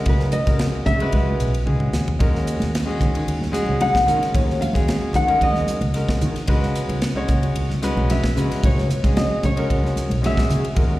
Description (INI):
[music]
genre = electric jazz fusion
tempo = 112 BPM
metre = 4/4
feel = straight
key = unclear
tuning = A4 = 435 Hz
[part]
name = nylon-string guitar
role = melody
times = 0.0-10.7 s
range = Cb5 to Gb5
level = -23 LUFS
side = equal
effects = slapback echo
[part]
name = clear grand piano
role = accompaniment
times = 0.0-11.0 s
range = Ab3 to Db5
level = -26 LUFS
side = equal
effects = slapback echo
[part]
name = fretless electric bass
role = bass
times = 0.1-11.0 s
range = Cb2 to Eb3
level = -22 LUFS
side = equal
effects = ensemble chorus
[part]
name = tight funk drum kit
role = drums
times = 0.1-10.9 s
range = hi-hat, kick drum, ride cymbal, snare drum, toms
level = -23 LUFS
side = equal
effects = none
[part]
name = congas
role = percussion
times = 2.6-10.6 s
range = none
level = -28 LUFS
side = right 1 dB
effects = none
[sound]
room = light reverb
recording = live gig heard through the venue's PA, recital hall reverb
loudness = -18 LUFS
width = side -16 dB against mid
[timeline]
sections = 0.0-11.0 A section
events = nylon-string guitar solo 0.0-11.0; drum fill 1.7-2.2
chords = 0.0 Db7sus2; 2.2 Ebm7; 6.5 Dbm7